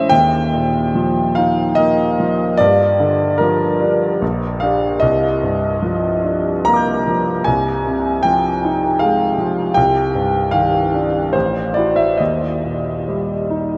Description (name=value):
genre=classical, impressionist solo piano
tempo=67-81 BPM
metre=3/4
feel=rubato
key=Eb major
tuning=A4 = 444 Hz
part: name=clear concert grand piano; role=solo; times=0.0-13.8 s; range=A1 to G6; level=-17 LUFS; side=equal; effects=none
room=wet huge ambient reverb, RT60 8.0 s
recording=in a vast, echoing space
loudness=-17 LUFS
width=mono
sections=0.1-13.8 A section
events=none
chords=0.1 Ebadd9; 2.6 Gm7; 4.2 Bb6; 5.0 Cm11; 7.5 Fm7/C; 9.8 Cmadd9; 11.3 Am6; 12.2 Eb